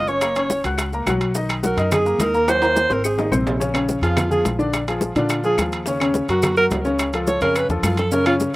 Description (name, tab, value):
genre	Afro-Cuban jazz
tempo	213 BPM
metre	4/4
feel	straight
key	Bb minor from 3.6 s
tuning	A4 = 440 Hz
part	warm alto saxophone	melody	0.0-8.3 s	D4 to Db5	-20 LUFS	right 2 dB	none
part	clear baby grand piano	accompaniment	0.0-8.6 s	C3 to Gb6	-22 LUFS	left 1 dB	none
part	upright bass	bass	0.0-8.6 s	Gb1 to Bb2	-25 LUFS	equal	none
part	congas	percussion	0.1-8.5 s	none	-27 LUFS	equal	none
part	maracas	percussion	0.1-8.6 s	none	-35 LUFS	right 4 dB	none
part	bongos	percussion	0.2-8.6 s	none	-30 LUFS	left 5 dB	none
part	claves	percussion	0.2-8.4 s	none	-30 LUFS	left 4 dB	none
part	timbales	percussion	0.2-8.4 s	none	-27 LUFS	right 2 dB	none
room	little or no reverb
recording	recorded outdoors, with no room sound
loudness	-17 LUFS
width	side -19 dB against mid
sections	0.0-3.6 A section; 3.6-8.6 B section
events	drum fill 2.5-3.6, 7.4-8.1; alto saxophone solo 3.6-8.6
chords	0.2 Gb; 1.4 Cbmaj7; 2.5 Ebm; 3.0 Abadd9; 3.6 Bbm7; 4.7 Bb7; 5.9 Ebm7; 7.0 Dbaug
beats	| 0.22 0.51 0.79 1.07 | 1.35 1.63 1.92 2.20 | 2.48 2.76 3.04 3.33 | 3.61 3.89 4.17 4.45 | 4.74 5.02 5.30 5.58 | 5.86 6.14 6.43 6.71 | 6.99 7.27 7.56 7.84 | 8.12 8.40